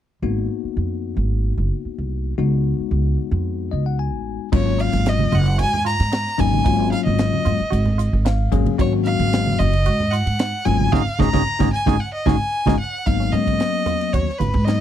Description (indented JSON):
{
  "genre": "electric jazz fusion",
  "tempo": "112 BPM",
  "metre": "4/4",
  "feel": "straight",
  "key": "G# dorian",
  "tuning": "A4 = 439 Hz",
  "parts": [
    { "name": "bell-like tine electric piano", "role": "accompaniment", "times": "0.2-14.8 s", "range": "F#3 to G#5", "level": "-23 LUFS", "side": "left 15 dB", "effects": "fast stereo tremolo" },
    { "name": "upright bass", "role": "bass", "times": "0.2-14.8 s", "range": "F#1 to G#2", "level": "-20 LUFS", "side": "right 1 dB", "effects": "none" },
    { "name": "clear violin", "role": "melody", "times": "4.5-14.8 s", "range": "B4 to A#5", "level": "-23 LUFS", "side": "equal", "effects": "slapback echo" },
    { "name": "clean electric guitar", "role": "stabs", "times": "4.5-14.8 s", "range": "C#4 to G#4", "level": "-29 LUFS", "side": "right 19 dB", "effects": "lush chorus" },
    { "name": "tight funk drum kit", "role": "drums", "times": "4.5-14.8 s", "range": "crash cymbal, hi-hat, kick drum, ride cymbal, snare drum", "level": "-24 LUFS", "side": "right 1 dB", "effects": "none" },
    { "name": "congas", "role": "percussion", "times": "4.9-14.7 s", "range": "none", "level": "-25 LUFS", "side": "right 6 dB", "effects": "none" }
  ],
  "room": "little or no reverb",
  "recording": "dry, close 1970s-style studio recording",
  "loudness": "-17 LUFS",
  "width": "side -10 dB against mid",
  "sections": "0.2-4.5 A section; 4.5-13.1 B section; 13.1-14.8 C section",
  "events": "tine electric piano fill 3.4-4.5, 8.0-8.8; band accent 10.9-13.1; drum fill 12.0-13.1",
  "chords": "0.2 G#m9; 2.4 C#9sus4; 4.5 G#13sus4; 13.1 G#m9"
}